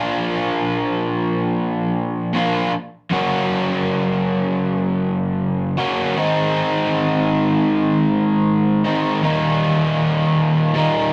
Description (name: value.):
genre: rock.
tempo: 79 BPM.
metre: 4/4.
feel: straight.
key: unclear.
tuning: A4 = 440 Hz.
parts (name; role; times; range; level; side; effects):
overdriven electric guitar; solo; 0.0-11.1 s; Eb2 to Gb4; -19 LUFS; equal; none.
room: moderate small room reverb, RT60 0.6 s.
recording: rough rehearsal-room recording, tube saturation.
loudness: -19 LUFS.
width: mono.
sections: 0.0-9.2 A section; 9.2-11.1 B section.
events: none.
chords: 0.0 Bb; 3.1 Gb; 6.2 Ab; 9.2 Eb.